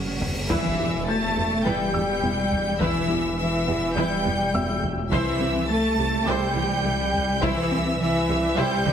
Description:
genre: cinematic, hybrid orchestral and electronic film score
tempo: 104 BPM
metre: 4/4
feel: straight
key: E minor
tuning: A4 = 445 Hz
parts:
  - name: clear chamber violin section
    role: melody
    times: 0.0-8.9 s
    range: C#5 to A6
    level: -31 LUFS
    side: equal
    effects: none
  - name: warm symphonic violin section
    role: second line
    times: 0.0-8.9 s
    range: F#4 to A5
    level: -30 LUFS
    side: equal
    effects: none
  - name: warm French horn section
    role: sustained chords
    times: 0.0-8.9 s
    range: E3 to F#4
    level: -28 LUFS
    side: left 3 dB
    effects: none
  - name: soft round pluck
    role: arpeggios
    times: 0.0-8.9 s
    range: C3 to E4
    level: -32 LUFS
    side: left 2 dB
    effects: chorus, tape echo
  - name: swelling detuned saw bass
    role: bass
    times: 0.0-8.9 s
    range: E1 to C2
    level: -31 LUFS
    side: equal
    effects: none
  - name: cymbal swell and impact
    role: sound effects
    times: 0.0-2.8 s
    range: none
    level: -31 LUFS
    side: equal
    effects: none
  - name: felt-muted upright piano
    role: texture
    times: 0.0-8.9 s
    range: E5 to G6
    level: -36 LUFS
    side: left 2 dB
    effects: tape echo
  - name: taiko ensemble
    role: drums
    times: 0.2-8.9 s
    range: none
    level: -32 LUFS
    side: equal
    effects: none
  - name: rich symphonic viola section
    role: accompaniment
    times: 0.5-8.9 s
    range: G3 to C5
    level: -31 LUFS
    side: right 1 dB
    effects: none
  - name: clear symphonic cello section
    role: bass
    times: 0.5-8.9 s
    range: E3 to A3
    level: -28 LUFS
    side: right 1 dB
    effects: none
  - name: clear symphonic double bass section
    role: bass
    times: 0.5-8.9 s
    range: C2 to E2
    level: -32 LUFS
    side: right 3 dB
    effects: none
room: wet recital hall reverb, RT60 1.4 s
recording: heavily compressed radio sound, multiband compression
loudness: -21 LUFS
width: side -8 dB against mid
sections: 0.5-8.9 A section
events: drum fill 0.0-0.5; cymbal swell 0.0-0.5; impact 0.5-2.8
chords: 0.5 Em; 5.1 C

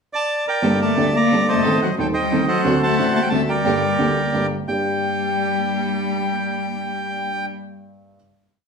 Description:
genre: tango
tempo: 178 BPM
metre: 3/4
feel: rubato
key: G harmonic minor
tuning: A4 = 442 Hz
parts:
  - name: bandoneon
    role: melody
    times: 0.1-7.5 s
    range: A4 to Bb5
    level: -21 LUFS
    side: right 1 dB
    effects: none
  - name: warm upright piano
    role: accompaniment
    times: 0.6-8.2 s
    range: Eb1 to A4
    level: -22 LUFS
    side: right 1 dB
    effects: none
  - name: rich studio string section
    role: stabs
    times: 0.6-7.4 s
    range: Bb3 to A4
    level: -28 LUFS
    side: left 1 dB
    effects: none
  - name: rich cello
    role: second line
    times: 0.8-7.5 s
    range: F#3 to Bb3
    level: -23 LUFS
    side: left 3 dB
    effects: none
room: wet club reverb, RT60 0.8 s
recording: heard from further back in the room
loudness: -17 LUFS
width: side -5 dB against mid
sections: 0.0-0.6 pickup bar; 0.6-4.7 A section; 4.7-6.7 final chord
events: none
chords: 0.0 Bbmaj7; 0.6 Gmadd9; 1.6 Adim; 2.6 D7; 3.7 Gm

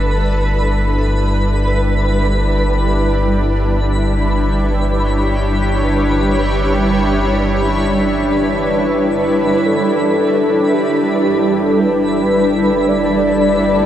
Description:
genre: ambient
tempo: free time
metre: none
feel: none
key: G lydian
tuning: A4 = 440 Hz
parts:
  - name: granular cloud pad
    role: sustained chords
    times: 0.0-13.9 s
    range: G3 to C#5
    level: -16 LUFS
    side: equal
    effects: built-in reverb
  - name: round analog bass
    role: bass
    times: 0.0-13.9 s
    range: G1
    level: -18 LUFS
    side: equal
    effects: none
  - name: twinkling granular texture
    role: texture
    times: 0.0-13.9 s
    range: B4 to B5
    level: -23 LUFS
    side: right 1 dB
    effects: built-in reverb
  - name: warm velvety synth lead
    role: melody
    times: 8.6-13.9 s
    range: G4 to D5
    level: -17 LUFS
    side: left 1 dB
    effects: chorus, diffuse ambient delay
  - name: organ-like drone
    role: drone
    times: 10.4-13.9 s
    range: G3 to G4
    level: -23 LUFS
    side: equal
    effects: ensemble chorus, built-in reverb
room: wet huge ambient reverb, RT60 7.9 s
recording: dark, warm production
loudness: -13 LUFS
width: side -11 dB against mid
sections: 0.0-9.6 A section; 9.6-13.9 B section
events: none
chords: 0.0 G69

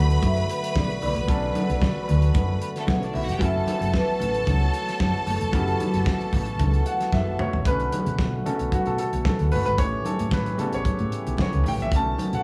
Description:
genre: disco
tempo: 113 BPM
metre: 4/4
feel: straight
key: B minor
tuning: A4 = 440 Hz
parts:
  - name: vibraphone with soft mallets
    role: melody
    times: 0.0-6.8 s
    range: A4 to F#5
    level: -33 LUFS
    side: equal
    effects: slapback echo
  - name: clear studio string section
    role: second line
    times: 0.0-7.4 s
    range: A3 to B5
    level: -33 LUFS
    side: equal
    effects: none
  - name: warm concert grand piano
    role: accompaniment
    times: 0.0-12.4 s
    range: C#3 to A5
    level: -31 LUFS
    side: equal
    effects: none
  - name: percussive tonewheel organ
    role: sustained chords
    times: 0.0-12.4 s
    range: D3 to G4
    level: -35 LUFS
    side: equal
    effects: overdrive, slow rotary speaker
  - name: hollow-body short-scale fingered electric bass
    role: bass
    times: 0.0-12.4 s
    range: E#1 to B2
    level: -27 LUFS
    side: equal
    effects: none
  - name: damped 70s drum kit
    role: drums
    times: 0.1-12.4 s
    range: hi-hat, kick drum, snare drum, toms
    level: -29 LUFS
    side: equal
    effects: gated reverb
  - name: congas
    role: percussion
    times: 0.2-12.3 s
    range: none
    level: -34 LUFS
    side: equal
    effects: none
room: light reverb, small room reverb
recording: small room ambience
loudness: -24 LUFS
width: mono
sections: 0.0-7.7 A section; 7.7-12.4 B section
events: grand piano fill 6.6-7.7; drum fill 7.1-7.7; grand piano solo 7.7-12.4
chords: 0.0 Bm7; 3.4 F#m7; 7.7 Bm7; 9.8 A7; 11.9 Bm7

